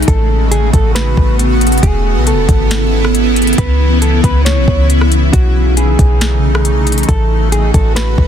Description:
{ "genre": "hip hop, atmospheric cloud-rap", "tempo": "137 BPM", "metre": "4/4", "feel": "half-time", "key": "unclear", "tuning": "A4 = 440 Hz", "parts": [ { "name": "mellow electric guitar", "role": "melody", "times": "0.0-8.3 s", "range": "F#4 to C#5", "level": "-20 LUFS", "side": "right 1 dB", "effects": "tape echo" }, { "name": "shimmering ambient pad", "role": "sustained chords", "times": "0.0-8.3 s", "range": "C#3 to F#4", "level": "-15 LUFS", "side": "equal", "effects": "chorus, built-in reverb, phaser, sidechain pumping" }, { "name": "clean 808-style bass", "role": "bass", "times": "0.0-8.3 s", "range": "E1 to C#2", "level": "-12 LUFS", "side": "equal", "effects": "none" }, { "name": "smooth R&B drum kit", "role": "drums", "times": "0.0-8.3 s", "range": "hi-hat, kick drum, rim click, snare drum", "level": "-14 LUFS", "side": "equal", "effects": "overdrive" } ], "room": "little or no reverb", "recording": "dense, heavily limited modern master", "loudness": "-9 LUFS", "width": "side -9 dB against mid", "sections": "0.0-8.3 A section", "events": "none", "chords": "0.1 A69; 1.8 E6; 3.6 C#m7; 5.3 B13; 7.1 A69" }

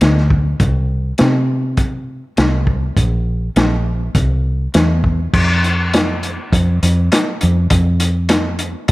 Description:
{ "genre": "folk rock and heartland rock", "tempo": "101 BPM", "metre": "4/4", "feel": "straight", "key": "C mixolydian", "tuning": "A4 = 440 Hz", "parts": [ { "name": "fingered electric bass", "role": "bass", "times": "0.0-8.9 s", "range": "Bb1 to C3", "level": "-15 LUFS", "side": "equal", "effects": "none" }, { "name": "vintage drum kit", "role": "drums", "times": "0.0-8.9 s", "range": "crash cymbal, hi-hat, kick drum, snare drum", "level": "-16 LUFS", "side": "equal", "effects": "none" } ], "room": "light reverb", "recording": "none", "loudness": "-13 LUFS", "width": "side -19 dB against mid", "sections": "0.0-5.3 A section; 5.3-8.9 B section", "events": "none", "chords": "none" }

